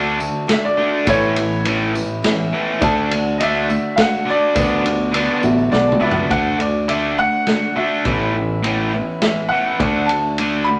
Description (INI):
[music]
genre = folk rock and heartland rock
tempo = 103 BPM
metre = 3/4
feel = straight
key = D major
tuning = A4 = 440 Hz
[part]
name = bright grand piano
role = melody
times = 0.0-10.7 s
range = E4 to B5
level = -23 LUFS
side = equal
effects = none
[part]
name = dark upright piano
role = accompaniment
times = 0.0-6.3 s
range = F#4 to B5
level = -33 LUFS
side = equal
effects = none
[part]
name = picked twelve-string acoustic guitar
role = accompaniment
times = 0.0-10.8 s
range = A2 to F#4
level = -29 LUFS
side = equal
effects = none
[part]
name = raw garage guitar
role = riff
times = 0.0-10.8 s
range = A2 to D4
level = -23 LUFS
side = equal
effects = overdrive
[part]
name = fingered electric bass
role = bass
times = 0.0-10.8 s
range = A1 to D2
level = -25 LUFS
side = equal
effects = none
[part]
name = tambourine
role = percussion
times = 0.2-6.1 s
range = none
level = -42 LUFS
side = equal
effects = none
[part]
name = vintage drum kit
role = drums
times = 0.5-10.5 s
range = kick drum, ride cymbal, snare drum, toms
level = -26 LUFS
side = equal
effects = none
[sound]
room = wet studio reverb, RT60 0.8 s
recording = none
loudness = -18 LUFS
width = mono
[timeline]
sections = 0.0-6.3 A section; 6.3-10.8 B section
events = grand piano solo 0.0-6.3; upright piano fill 5.1-6.3; drum fill 5.7-6.3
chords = 0.0 D; 1.1 Aadd9; 2.8 D; 4.6 Bm/D; 6.3 D; 8.1 Aadd9; 9.8 D